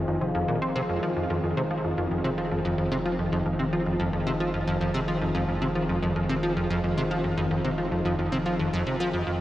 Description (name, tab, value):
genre	ambient, sequencer-driven space music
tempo	111 BPM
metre	4/4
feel	straight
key	F minor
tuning	A4 = 445 Hz
part	sweeping resonant pad	sustained chords	0.0-9.4 s	F3 to G5	-32 LUFS	right 1 dB	chorus, shimmer reverb
part	concert harp	arpeggios	0.0-9.4 s	Eb3 to Eb4	-30 LUFS	left 2 dB	auto-pan, tape echo, shimmer reverb
part	plucky analog bass	riff	0.0-9.4 s	F2 to C4	-27 LUFS	equal	analog chorus, tape echo, shimmer reverb
part	warm sub bass	bass	0.0-9.4 s	F1	-40 LUFS	equal	none
room	wet huge ambient reverb, RT60 7.3 s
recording	worn, warbling old tape, cassette tape, warbly pitch drift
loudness	-24 LUFS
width	side -14 dB against mid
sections	0.0-9.4 A section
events	none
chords	0.0 Fm7